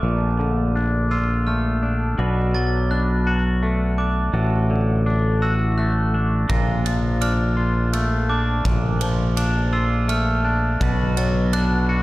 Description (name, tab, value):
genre	post-rock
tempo	84 BPM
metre	3/4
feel	straight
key	unclear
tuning	A4 = 439 Hz
part	pedal steel guitar	sustained chords	0.0-12.0 s	F4 to Bb5	-32 LUFS	right 1 dB	wide subtle chorus
part	glockenspiel with soft plastic mallets	arpeggios	0.0-12.0 s	D6 to A6	-30 LUFS	right 3 dB	slapback echo
part	twangy electric guitar	arpeggios	0.0-12.0 s	A2 to F#4	-24 LUFS	left 2 dB	phaser, slapback echo
part	growling fingered electric bass	bass	0.0-12.0 s	A1 to B1	-20 LUFS	equal	overdrive
part	big rock drum kit	drums	6.5-11.7 s	kick drum, ride cymbal	-28 LUFS	equal	none
room	small room ambience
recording	dark, warm production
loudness	-18 LUFS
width	side -18 dB against mid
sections	0.0-12.0 A section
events	none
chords	0.0 Bbmaj7; 2.2 Bm7; 4.3 D/A; 6.5 Bbmaj7; 10.8 Bm7